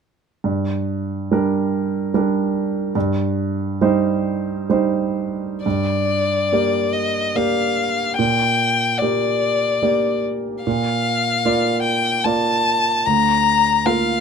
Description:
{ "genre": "classical, romantic duo for violin and grand piano", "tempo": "61-77 BPM", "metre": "3/4", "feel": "rubato", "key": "G minor", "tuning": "A4 = 440 Hz", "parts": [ { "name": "clear concert grand piano", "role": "accompaniment", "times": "0.4-14.2 s", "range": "D2 to D5", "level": "-19 LUFS", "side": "right 3 dB", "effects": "none" }, { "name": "rich violin", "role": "melody", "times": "5.7-14.2 s", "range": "D5 to Bb5", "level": "-18 LUFS", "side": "left 5 dB", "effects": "none" } ], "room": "light reverb", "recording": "close, detailed microphones", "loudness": "-17 LUFS", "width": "side -6 dB against mid", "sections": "0.4-5.6 A section; 5.6-14.2 B section", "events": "none", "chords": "0.4 Gm; 3.0 Cm/G; 5.6 Gm; 8.2 Gm/Bb; 10.7 Bb; 13.1 Bb/D" }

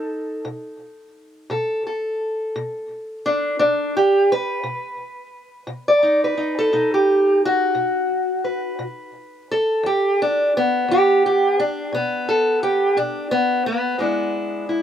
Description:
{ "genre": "acoustic country blues, solo or duo", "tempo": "58 BPM (dotted quarters)", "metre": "12/8", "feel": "straight", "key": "unclear", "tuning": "A4 = 440 Hz", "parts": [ { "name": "fingerpicked steel-string acoustic guitar", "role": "solo", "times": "0.0-14.8 s", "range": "E2 to D5", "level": "-18 LUFS", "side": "equal", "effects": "slapback echo" } ], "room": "little or no reverb", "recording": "recorded outdoors, with no room sound", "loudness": "-17 LUFS", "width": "side -9 dB against mid", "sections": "0.0-14.0 A section", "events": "none", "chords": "0.0 B7; 9.8 N.C.; 14.0 E7" }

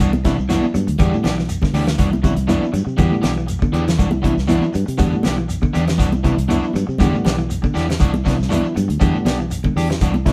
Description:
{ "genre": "afrobeat", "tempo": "120 BPM", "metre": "4/4", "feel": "straight", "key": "E minor", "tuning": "A4 = 441 Hz", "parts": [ { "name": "electric guitar at the edge of break-up", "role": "arpeggios", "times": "0.0-10.3 s", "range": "C3 to F#3", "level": "-28 LUFS", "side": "equal", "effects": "none" }, { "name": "electric guitar at the edge of break-up", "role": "stabs", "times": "0.0-10.3 s", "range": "E3 to G4", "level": "-26 LUFS", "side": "equal", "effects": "none" }, { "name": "fingered electric bass", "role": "bass", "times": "0.0-10.3 s", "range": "B1 to C3", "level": "-23 LUFS", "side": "equal", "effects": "none" }, { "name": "damped 70s drum kit", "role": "drums", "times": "0.0-10.3 s", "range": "hi-hat, kick drum, snare drum", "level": "-22 LUFS", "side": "equal", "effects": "none" }, { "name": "shekere", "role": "percussion", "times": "0.0-10.3 s", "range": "none", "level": "-32 LUFS", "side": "equal", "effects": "none" }, { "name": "bright reed electric piano", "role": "accompaniment", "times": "0.1-10.3 s", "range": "F#3 to F#4", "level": "-25 LUFS", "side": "equal", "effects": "fast tremolo" }, { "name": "congas", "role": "percussion", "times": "0.1-10.3 s", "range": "none", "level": "-27 LUFS", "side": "equal", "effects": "none" } ], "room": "light reverb", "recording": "band playing live in one room", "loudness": "-18 LUFS", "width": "mono", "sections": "0.0-10.3 A section", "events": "none", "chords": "0.0 Cmaj9#11; 1.0 Em7; 2.0 Cmaj9#11; 3.0 Em7; 4.0 Cmaj9#11; 5.0 Em7; 6.0 Cmaj9#11; 7.0 Em7; 8.0 Cmaj9#11; 9.0 Em7" }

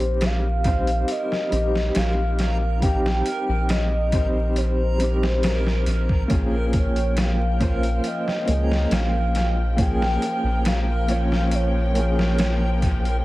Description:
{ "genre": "trip hop", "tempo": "69 BPM", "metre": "4/4", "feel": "straight", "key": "Bb dorian", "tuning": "A4 = 438 Hz", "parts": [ { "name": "pure breathy sine lead", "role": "melody", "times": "0.0-12.8 s", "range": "C5 to G5", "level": "-27 LUFS", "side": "equal", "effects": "analog chorus, tape echo" }, { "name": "dark upright piano", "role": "accompaniment", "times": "0.0-13.2 s", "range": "G3 to Db5", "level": "-27 LUFS", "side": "equal", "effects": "tremolo, vintage 12-bit sampler grit, tape echo" }, { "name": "round analog bass", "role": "bass", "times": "0.0-13.2 s", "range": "Bb1 to Db2", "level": "-22 LUFS", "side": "equal", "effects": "none" }, { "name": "trip hop sampler-style drum kit", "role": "drums", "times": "0.0-13.2 s", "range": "hi-hat, kick drum, snare drum", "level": "-26 LUFS", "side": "equal", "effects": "overdrive, dub echo" }, { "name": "backwards swelling texture", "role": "texture", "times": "0.0-13.2 s", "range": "Bb4", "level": "-36 LUFS", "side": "right 2 dB", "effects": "built-in reverb" }, { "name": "muted studio string section", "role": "sustained chords", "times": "6.3-13.2 s", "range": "F3 to G5", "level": "-31 LUFS", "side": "left 1 dB", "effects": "none" } ], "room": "light reverb", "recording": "echo-heavy mix, vinyl crackle", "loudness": "-19 LUFS", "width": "side -18 dB against mid", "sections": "0.0-13.2 A section", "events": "none", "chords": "0.0 Cm/Bb; 6.3 Bbm7" }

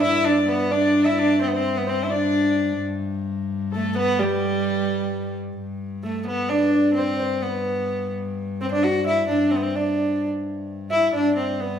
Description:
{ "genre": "medieval dance", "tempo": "86 BPM (dotted quarters)", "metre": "6/8", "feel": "straight", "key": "G major", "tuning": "A4 = 440 Hz", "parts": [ { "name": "rich viola da gamba", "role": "melody", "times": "0.0-11.8 s", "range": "G3 to F#4", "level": "-21 LUFS", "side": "equal", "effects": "none" }, { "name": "concert harp", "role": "second line", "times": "0.0-11.8 s", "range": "G4 to E5", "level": "-29 LUFS", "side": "right 4 dB", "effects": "none" }, { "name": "rich fiddle", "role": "second line", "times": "0.0-5.3 s", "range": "G4 to E5", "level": "-30 LUFS", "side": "left 6 dB", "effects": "none" }, { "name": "rich viola da gamba", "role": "drone", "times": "0.0-11.8 s", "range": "G2", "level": "-30 LUFS", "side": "left 4 dB", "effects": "none" } ], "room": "wet large studio reverb, RT60 0.9 s", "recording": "band playing live in one room", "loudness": "-20 LUFS", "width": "side -8 dB against mid", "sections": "0.0-5.6 A section; 5.6-11.8 B section", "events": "none", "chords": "none" }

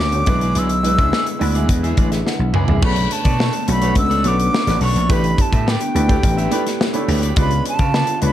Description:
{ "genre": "polished 1980s jazz-funk pop", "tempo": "106 BPM", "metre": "4/4", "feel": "straight", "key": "B minor", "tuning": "A4 = 440 Hz", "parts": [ { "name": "breathy silver concert flute", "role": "melody", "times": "0.0-8.3 s", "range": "G5 to E6", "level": "-22 LUFS", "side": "equal", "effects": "none" }, { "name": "clear baby grand piano", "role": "accompaniment", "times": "0.0-8.3 s", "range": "G#3 to G#5", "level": "-24 LUFS", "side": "equal", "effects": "lush chorus" }, { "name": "soft string machine", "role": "sustained chords", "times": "0.0-8.3 s", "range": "D3 to G4", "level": "-26 LUFS", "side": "left 1 dB", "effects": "ensemble chorus" }, { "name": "electric guitar at the edge of break-up", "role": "riff", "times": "0.0-8.3 s", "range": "D4 to E#5", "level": "-30 LUFS", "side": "right 4 dB", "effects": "wide subtle chorus" }, { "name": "vintage slap bass", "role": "bass", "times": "0.0-8.3 s", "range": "A1 to C#3", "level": "-19 LUFS", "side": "equal", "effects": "none" }, { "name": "modern studio drum kit", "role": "drums", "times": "0.1-8.3 s", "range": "crash cymbal, hi-hat, kick drum, snare drum, toms", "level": "-20 LUFS", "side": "equal", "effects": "none" } ], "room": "little or no reverb", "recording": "dark, warm production", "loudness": "-15 LUFS", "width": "side -12 dB against mid", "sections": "0.0-2.8 A section; 2.8-8.3 B section", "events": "drum fill 2.3-2.8", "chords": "0.3 E7/B; 2.8 Bm9; 5.1 A9sus4; 7.4 C#7b9" }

